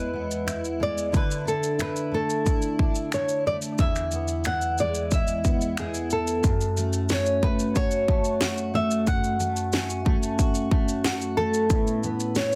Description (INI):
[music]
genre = acoustic pop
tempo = 91 BPM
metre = 4/4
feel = straight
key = unclear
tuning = A4 = 440 Hz
[part]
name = flamenco guitar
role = melody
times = 0.0-12.6 s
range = F#4 to F#5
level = -30 LUFS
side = equal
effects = tape echo
[part]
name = fingerpicked steel-string acoustic guitar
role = accompaniment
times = 0.0-12.6 s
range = E2 to F#4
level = -30 LUFS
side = equal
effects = double-tracked
[part]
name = house drum kit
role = drums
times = 0.3-12.6 s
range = finger snaps, kick drum, shaker, snare drum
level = -28 LUFS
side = equal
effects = none
[part]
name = mellow tonewheel organ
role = sustained chords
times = 6.4-12.6 s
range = A3 to B4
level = -37 LUFS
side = equal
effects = slow rotary speaker
[sound]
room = moderate studio ambience, RT60 0.5 s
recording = dense, heavily limited modern master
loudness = -25 LUFS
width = mono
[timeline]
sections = 0.0-6.4 A section; 6.4-12.6 B section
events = none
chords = 0.0 E; 1.1 Dsus2; 3.8 E; 6.4 F#m; 11.7 Aadd9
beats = 0.47 | 1.14 1.80 2.46 3.13 | 3.79 4.45 5.11 5.78 | 6.44 7.10 7.76 8.41 | 9.07 9.73 10.39 11.04 | 11.70 12.35